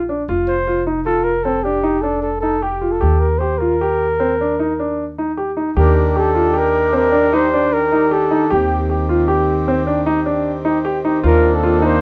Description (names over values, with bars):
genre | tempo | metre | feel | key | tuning
contemporary instrumental, chamber music in an uneven meter | 153 BPM | 7/4 | straight | Eb lydian | A4 = 440 Hz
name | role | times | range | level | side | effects
breathy flugelhorn | melody | 0.0-12.0 s | G4 to C5 | -20 LUFS | equal | none
upright bass | bass | 0.0-12.0 s | F1 to Eb2 | -24 LUFS | equal | none
warm grand piano | arpeggios | 0.1-11.9 s | C4 to G4 | -20 LUFS | equal | none
hand-pumped harmonium | sustained chords | 5.8-12.0 s | Eb3 to G4 | -24 LUFS | equal | none
room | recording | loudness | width
light reverb | worn, warbling old tape, cassette tape, warbly pitch drift | -17 LUFS | mono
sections
0.0-5.8 A section; 5.8-12.0 B section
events
none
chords
0.3 F5; 3.0 Ebmaj7; 11.2 Bb/Eb